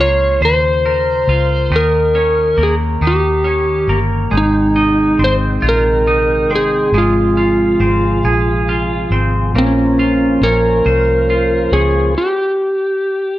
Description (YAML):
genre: pop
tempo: 46 BPM (dotted quarters)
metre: 6/8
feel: straight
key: unclear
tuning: A4 = 437 Hz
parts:
  - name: electric slide guitar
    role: melody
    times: 0.0-13.4 s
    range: Db4 to Db5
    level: -14 LUFS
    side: equal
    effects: slapback echo
  - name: twelve-string electric guitar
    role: accompaniment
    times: 0.0-12.8 s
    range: Db3 to C5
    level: -18 LUFS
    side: equal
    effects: none
  - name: vintage muted fingered electric bass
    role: bass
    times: 0.0-12.1 s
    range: G1 to Eb2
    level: -18 LUFS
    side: equal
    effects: none
  - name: tonewheel organ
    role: sustained chords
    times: 4.3-12.1 s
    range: C3 to G5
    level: -21 LUFS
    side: equal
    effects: overdrive, slow rotary speaker
room: moderate spring reverb, RT60 1.6 s, digital ambience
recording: none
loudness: -12 LUFS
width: side -14 dB against mid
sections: 0.0-13.4 A section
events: stop 12.2-13.4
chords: 0.0 Bbmadd9/Db; 1.7 Eb5; 3.0 Eb7; 4.3 Abmaj7; 6.9 Fm/Ab; 9.5 Bbmadd9; 12.2 N.C.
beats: 0.41 | 1.71 3.02 | 4.32 5.63 | 6.93 8.24 | 9.55 10.85 | 12.16